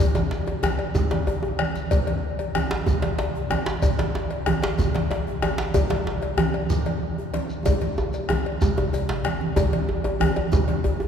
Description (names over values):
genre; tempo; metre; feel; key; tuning
west african traditional, West African drum ensemble; 125 BPM (dotted quarters); 12/8; straight; none; none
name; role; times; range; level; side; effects
bombo; percussion; 0.0-10.7 s; none; -27 LUFS; equal; none
djembe; percussion; 0.0-11.1 s; none; -29 LUFS; left 3 dB; none
djembe; percussion; 0.1-11.1 s; none; -28 LUFS; right 1 dB; none
congas; percussion; 0.2-10.8 s; none; -27 LUFS; right 3 dB; none
cowbell; percussion; 0.2-11.0 s; none; -32 LUFS; left 5 dB; none
shekere; percussion; 0.2-10.7 s; none; -35 LUFS; left 2 dB; none
room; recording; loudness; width
wet cathedral reverb, RT60 4.2 s; recorded in a church or concert hall; -21 LUFS; side -8 dB against mid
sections
0.0-9.6 A section; 9.6-11.1 B section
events
drum fill 1.4-1.9, 7.7-9.6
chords
none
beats
0.47 0.95 1.43 | 1.91 2.39 2.87 3.35 | 3.83 4.30 4.78 5.26 | 5.74 6.22 6.70 7.18 | 7.66 8.13 8.61 9.09 | 9.57 10.05 10.53 11.00